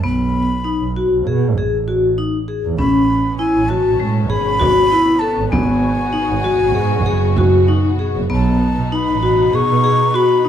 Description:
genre	contemporary instrumental, chamber music in an uneven meter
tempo	196 BPM (eighths)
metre	9/8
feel	straight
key	unclear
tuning	A4 = 440 Hz
part	breathy jazz flute	melody	0.0-10.5 s	G#5 to C#6	-20 LUFS	left 1 dB	none
part	vibraphone with hard mallets	arpeggios	0.0-10.5 s	G#3 to A4	-17 LUFS	left 3 dB	none
part	rich double bass	bass	0.0-10.5 s	F#1 to B2	-19 LUFS	right 4 dB	none
part	rich symphonic string section	sustained chords	2.8-10.5 s	B2 to F#4	-26 LUFS	left 1 dB	none
part	frame drum	percussion	2.8-8.2 s	none	-23 LUFS	right 2 dB	none
room	moderate recital hall reverb, RT60 1.4 s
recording	dark, warm production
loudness	-14 LUFS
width	side -9 dB against mid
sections	0.0-8.3 A section; 8.3-10.5 B section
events	none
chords	0.0 B7; 2.8 Amaj9; 5.5 G#m7; 8.3 B7

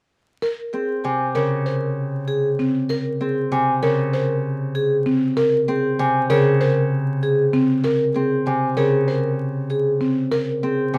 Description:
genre	classical, minimalist pattern music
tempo	97 BPM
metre	4/4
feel	straight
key	Bb minor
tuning	A4 = 440 Hz
part	vibraphone with soft mallets	melody	0.4-11.0 s	Ab4 to Ab5	-24 LUFS	equal	none
part	buzzing marimba with medium mallets	arpeggios	0.4-10.5 s	C4 to C5	-25 LUFS	equal	none
part	Celtic harp	accompaniment	0.7-11.0 s	C3 to C4	-24 LUFS	equal	none
room	light reverb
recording	close, detailed microphones, vinyl crackle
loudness	-20 LUFS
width	mono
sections	0.4-11.0 A section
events	none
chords	0.4 Bbm7

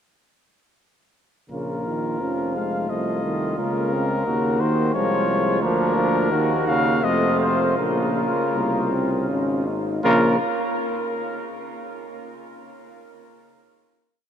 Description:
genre	classical, brass quintet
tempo	79-89 BPM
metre	3/4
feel	rubato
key	Bb minor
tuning	A4 = 440 Hz
part	mellow cornet	melody	1.5-10.4 s	Bb4 to F5	-26 LUFS	left 4 dB	none
part	mellow trumpet	second line	1.5-10.4 s	D4 to Gb4	-29 LUFS	right 4 dB	none
part	bright trombone	accompaniment	1.5-10.4 s	C3 to F3	-27 LUFS	right 2 dB	none
part	warm French horn	accompaniment	1.5-10.4 s	Ab3 to Eb4	-27 LUFS	left 2 dB	none
part	clear tuba	bass	1.5-10.4 s	F1 to F2	-26 LUFS	right 1 dB	none
room	wet huge ambient reverb, RT60 7.3 s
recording	in a vast, echoing space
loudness	-19 LUFS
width	side -8 dB against mid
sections	1.5-10.0 A section; 10.0-12.2 final chord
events	none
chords	1.5 Bbm; 2.9 F7/C; 3.6 Bbm/Db; 5.6 Bb/D; 6.3 Ebm; 7.0 F7; 7.8 Bbm

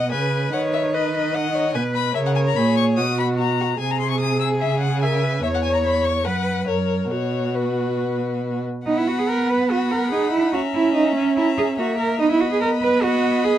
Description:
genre	quick classical-period movement for string quartet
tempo	146 BPM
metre	4/4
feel	rubato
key	B major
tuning	A4 = 439 Hz
part	rich violin	melody	0.0-13.6 s	B4 to E6	-27 LUFS	left 10 dB	none
part	clear violin	second line	0.0-13.6 s	F#4 to F#5	-28 LUFS	left 4 dB	none
part	clear viola	accompaniment	0.0-13.6 s	A#3 to E5	-24 LUFS	right 1 dB	none
part	rich cello	bass	0.0-13.6 s	E2 to B4	-21 LUFS	right 3 dB	none
room	light reverb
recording	dark, warm production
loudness	-18 LUFS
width	side -11 dB against mid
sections	0.0-8.9 A section; 8.9-13.6 B section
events	none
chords	0.0 B; 2.2 A#m7; 3.0 B5; 3.8 G#/B#; 4.6 C#m; 5.4 C#m/E; 6.3 B5/F#; 6.7 F#; 7.1 B5; 8.9 B; 10.5 F#7/C#; 12.2 B

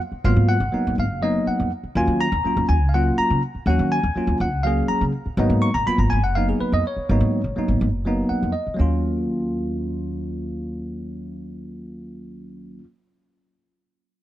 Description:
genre	electric jazz fusion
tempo	246 BPM (eighths)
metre	7/8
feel	straight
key	Eb minor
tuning	A4 = 441 Hz
part	upright bass	bass	0.1-12.8 s	Gb1 to Eb3	-22 LUFS	equal	none
part	barky tine electric piano	accompaniment	0.2-12.8 s	Gb3 to Db6	-22 LUFS	equal	wide subtle chorus
room	small room ambience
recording	dry, close 1970s-style studio recording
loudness	-19 LUFS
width	side -13 dB against mid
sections	0.0-8.8 A section; 8.8-12.2 B section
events	tine electric piano fill 8.1-8.8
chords	0.0 Abm9; 2.0 Ebm9; 5.4 Abm9; 8.8 Ebm9

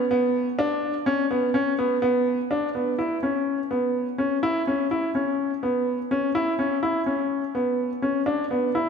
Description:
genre	electronica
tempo	125 BPM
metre	4/4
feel	straight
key	unclear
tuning	A4 = 440 Hz
part	clear upright piano	solo	0.0-8.9 s	B3 to E4	-22 LUFS	equal	none
room	wet scoring stage reverb, RT60 1.7 s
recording	dark, warm production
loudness	-22 LUFS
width	side -6 dB against mid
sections	0.0-2.5 A section; 2.5-8.9 B section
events	none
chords	none

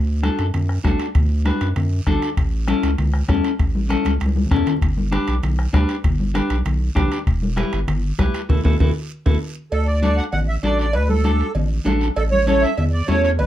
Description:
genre	latin, cumbia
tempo	196 BPM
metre	4/4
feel	straight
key	D major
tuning	A4 = 440 Hz
part	saturated sub bass	bass	0.0-13.5 s	E1 to F#2	-20 LUFS	equal	none
part	clean electric guitar	accompaniment	0.2-13.3 s	C#4 to B4	-23 LUFS	left 2 dB	none
part	bombo	percussion	0.2-9.3 s	none	-20 LUFS	left 1 dB	none
part	congas	percussion	0.2-13.5 s	none	-26 LUFS	left 2 dB	none
part	guiro	percussion	0.2-13.5 s	none	-39 LUFS	right 6 dB	none
part	timbales and cowbell	percussion	0.2-13.5 s	none	-31 LUFS	right 5 dB	none
part	accordion	melody	9.7-13.5 s	A4 to F#5	-21 LUFS	right 3 dB	light tremolo tuning
room	light reverb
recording	dark, warm production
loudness	-17 LUFS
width	side -12 dB against mid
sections	0.0-9.7 A section; 9.7-13.5 B section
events	drum fill 4.1-4.8, 8.8-9.7; band accent 8.5-9.7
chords	0.0 D; 2.4 A; 4.8 G; 7.3 Em; 8.5 Dadd9; 9.7 D; 12.2 A

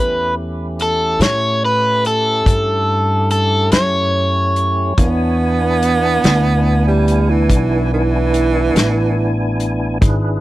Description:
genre	slow blues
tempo	48 BPM (dotted quarters)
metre	12/8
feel	straight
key	unclear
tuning	A4 = 441 Hz
part	overdriven electric guitar	melody	0.0-5.4 s	A4 to C#5	-16 LUFS	equal	none
part	tonewheel organ	sustained chords	0.0-10.4 s	A3 to G#5	-22 LUFS	left 1 dB	slow rotary speaker, overdrive, chorus vibrato
part	upright bass	bass	0.0-10.4 s	G#1 to A2	-18 LUFS	equal	none
part	vintage drum kit	drums	0.8-10.2 s	hi-hat, kick drum, snare drum	-15 LUFS	left 1 dB	none
part	bright tenor saxophone	second line	5.0-9.6 s	E3 to B3	-18 LUFS	right 5 dB	none
room	little or no reverb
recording	dry, close 1970s-style studio recording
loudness	-13 LUFS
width	side -16 dB against mid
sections	0.0-10.4 A section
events	none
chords	0.0 A7; 5.0 E7

